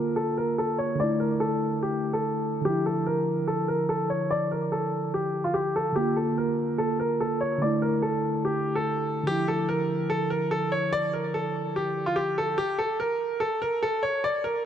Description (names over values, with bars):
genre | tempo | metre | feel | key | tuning
hip hop | 145 BPM | 4/4 | half-time | D harmonic minor | A4 = 440 Hz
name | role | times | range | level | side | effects
clear concert grand piano | melody | 0.0-14.6 s | F4 to D5 | -26 LUFS | equal | low-pass filter
mellow tine electric piano | accompaniment | 0.0-12.6 s | D3 to F4 | -28 LUFS | right 1 dB | slow stereo tremolo, low-pass filter
room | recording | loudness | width
moderate lush hall reverb, RT60 2.9 s | dark, warm production, nothing above 11.0 kHz | -24 LUFS | side -9 dB against mid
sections
0.0-14.7 A section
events
filter sweep 0.0-9.3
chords
0.0 Bb; 1.0 Asus4; 2.6 Dmadd9; 6.0 Bb; 7.6 Asus4; 9.3 Dmadd9; 12.6 N.C.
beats
0.17 0.58 | 0.99 1.41 1.82 2.24 | 2.65 3.06 3.48 3.89 | 4.30 4.72 5.13 5.55 | 5.96 6.37 6.79 7.20 | 7.62 8.03 8.44 8.86 | 9.27 9.68 10.10 10.51 | 10.93 11.34 11.75 12.17 | 12.58 12.99 13.41 13.82 | 14.24